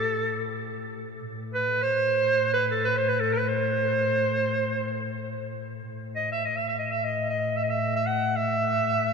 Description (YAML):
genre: Turkish makam ensemble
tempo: free time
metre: none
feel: none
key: A makam nikriz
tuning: A4 = 445 Hz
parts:
  - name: bright clarinet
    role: melody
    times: 0.0-9.1 s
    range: A4 to F#5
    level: -25 LUFS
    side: right 2 dB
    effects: none
  - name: dark double bass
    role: drone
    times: 0.0-9.1 s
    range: A2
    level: -32 LUFS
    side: left 3 dB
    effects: none
room: wet cathedral reverb, RT60 5.1 s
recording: recorded in a church or concert hall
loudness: -24 LUFS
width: side -5 dB against mid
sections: 0.0-9.1 A section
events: none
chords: none